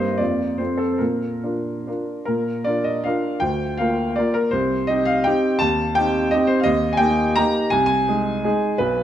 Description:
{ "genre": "classical, romantic triple-time dance for piano with dotted rhythms", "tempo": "129-183 BPM", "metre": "3/4", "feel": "rubato", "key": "Bb major", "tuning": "A4 = 440 Hz", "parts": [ { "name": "warm baby grand piano", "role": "solo", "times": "0.0-9.0 s", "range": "Cb2 to Bb5", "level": "-18 LUFS", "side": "equal", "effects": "none" } ], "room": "wet recital hall reverb, RT60 1.5 s", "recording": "none", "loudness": "-18 LUFS", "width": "side -11 dB against mid", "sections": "0.0-2.3 A section; 2.3-9.0 B section", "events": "none", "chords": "0.2 Bb/F; 0.6 F; 1.0 Bb; 3.4 Bb/D; 4.5 Cm; 5.6 Cm/Eb; 6.7 Eb; 7.7 Ab/C" }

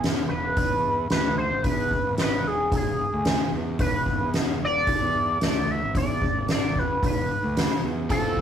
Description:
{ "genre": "psychedelic rock", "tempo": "112 BPM", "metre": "4/4", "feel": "straight", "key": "E phrygian dominant", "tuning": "A4 = 437 Hz", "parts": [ { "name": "fuzz fingered electric bass", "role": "bass", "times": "0.0-8.4 s", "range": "E1 to E2", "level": "-31 LUFS", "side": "equal", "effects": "overdrive" }, { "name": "soft-mallet drum kit", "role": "drums", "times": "0.0-8.4 s", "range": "hi-hat, kick drum, snare drum", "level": "-25 LUFS", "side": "equal", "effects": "none" }, { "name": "sync lead", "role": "melody", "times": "0.3-8.4 s", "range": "G#4 to E5", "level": "-25 LUFS", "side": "equal", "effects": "chorus" }, { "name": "overdriven electric guitar", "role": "riff", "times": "8.1-8.4 s", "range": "E3 to F4", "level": "-29 LUFS", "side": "equal", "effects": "none" } ], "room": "moderate small room reverb, RT60 0.6 s", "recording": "rough rehearsal-room recording", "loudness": "-22 LUFS", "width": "side -9 dB against mid", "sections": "0.0-8.4 A section", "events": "none", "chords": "0.0 E" }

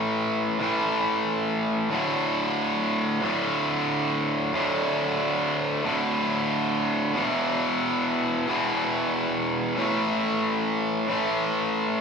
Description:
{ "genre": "rock", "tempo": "92 BPM", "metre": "4/4", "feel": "straight", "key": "unclear", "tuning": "A4 = 440 Hz", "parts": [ { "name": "overdriven electric guitar", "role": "solo", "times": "0.0-12.0 s", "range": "D2 to A3", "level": "-23 LUFS", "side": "equal", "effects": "spring reverb" } ], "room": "wet scoring stage reverb, RT60 1.6 s", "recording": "recorded in a church or concert hall", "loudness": "-23 LUFS", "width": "side -6 dB against mid", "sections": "0.0-12.0 A section", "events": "none", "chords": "0.0 A5; 1.9 D5; 7.2 E5; 9.8 A5" }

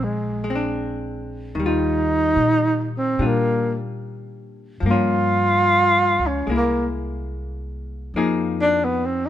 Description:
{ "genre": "jazz ballad", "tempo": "73 BPM", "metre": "4/4", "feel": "swing 66% on 8ths", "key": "unclear", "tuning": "A4 = 444 Hz", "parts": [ { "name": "breathy tenor saxophone", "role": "melody", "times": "0.0-9.3 s", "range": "Ab3 to F4", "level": "-19 LUFS", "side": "right 1 dB", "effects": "none" }, { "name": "upright bass", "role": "bass", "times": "0.0-9.3 s", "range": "Bb1 to Bb2", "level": "-26 LUFS", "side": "left 1 dB", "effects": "none" }, { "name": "archtop guitar, miked and amplified", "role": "accompaniment", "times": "0.4-9.3 s", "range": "Eb3 to Ab4", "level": "-26 LUFS", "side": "left 4 dB", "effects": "none" } ], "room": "light reverb", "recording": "minimal, uncompressed stereo recording", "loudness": "-18 LUFS", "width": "side -11 dB against mid", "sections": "0.0-9.3 A section", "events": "tenor saxophone solo 0.0-9.3", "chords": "0.0 Bb9; 1.6 Ebmaj9; 4.8 Gm7b5; 6.5 C7b13; 8.1 Fm7" }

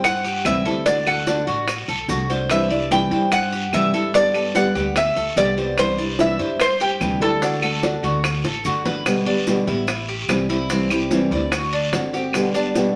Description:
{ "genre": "latin, Cuban son and guajira", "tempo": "146 BPM", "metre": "4/4", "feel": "straight", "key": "G major", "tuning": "A4 = 441 Hz", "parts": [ { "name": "Cuban tres", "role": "melody", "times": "0.0-8.6 s", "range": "G4 to G5", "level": "-23 LUFS", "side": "equal", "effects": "none" }, { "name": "nylon-string guitar", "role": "accompaniment", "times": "0.0-13.0 s", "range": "B2 to G4", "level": "-25 LUFS", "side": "equal", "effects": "none" }, { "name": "Cuban tres", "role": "arpeggios", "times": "0.0-12.9 s", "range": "C4 to D5", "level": "-29 LUFS", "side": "equal", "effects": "none" }, { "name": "upright bass", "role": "bass", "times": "0.0-12.9 s", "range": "G1 to G2", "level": "-31 LUFS", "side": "equal", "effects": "none" }, { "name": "bongos", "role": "percussion", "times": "0.0-13.0 s", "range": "none", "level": "-30 LUFS", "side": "equal", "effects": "none" }, { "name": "claves", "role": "percussion", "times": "0.0-12.5 s", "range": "none", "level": "-30 LUFS", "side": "equal", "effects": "none" }, { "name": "guiro", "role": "percussion", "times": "0.0-13.0 s", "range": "none", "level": "-35 LUFS", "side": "equal", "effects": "none" }, { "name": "maracas", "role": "percussion", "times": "0.0-13.0 s", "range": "none", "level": "-40 LUFS", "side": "equal", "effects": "none" } ], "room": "wet studio reverb, RT60 0.7 s", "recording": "none", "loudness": "-20 LUFS", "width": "mono", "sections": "0.0-9.1 A section; 9.1-13.0 B section", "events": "drum fill 8.4-9.1", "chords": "0.0 C; 0.9 D; 2.5 Cadd9; 4.1 Gadd9; 5.8 Cadd9; 7.4 D; 9.1 G; 9.9 Am7; 10.7 C; 11.5 D7; 12.3 G" }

